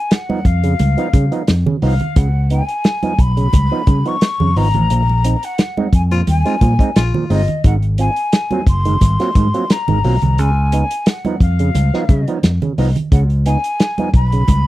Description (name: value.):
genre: funk.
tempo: 88 BPM.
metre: 4/4.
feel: straight.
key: unclear.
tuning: A4 = 440 Hz.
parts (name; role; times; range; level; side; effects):
breathy mellow jazz flute; melody; 0.0-14.7 s; Eb5 to Db6; -21 LUFS; left 3 dB; slapback echo.
warm soul drum kit; drums; 0.1-14.7 s; hi-hat, kick drum, snare drum; -13 LUFS; equal; none.
congas; percussion; 0.1-14.6 s; none; -23 LUFS; right 3 dB; none.
overdriven clav; stabs; 0.3-14.4 s; Ab2 to F4; -21 LUFS; right 4 dB; auto-wah.
fingered electric bass; bass; 0.4-14.6 s; Gb1 to Db3; -15 LUFS; equal; none.
raspy baritone saxophone; second line; 6.1-7.5 s; F4; -25 LUFS; left 7 dB; slapback echo.
room: little or no reverb.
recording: dry, close 1970s-style studio recording.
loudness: -13 LUFS.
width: side -16 dB against mid.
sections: 0.0-14.7 A section.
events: band accent 4.9-7.6.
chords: 0.0 Db9; 4.9 Bb9sus4; 7.6 Ab13; 10.4 Db9.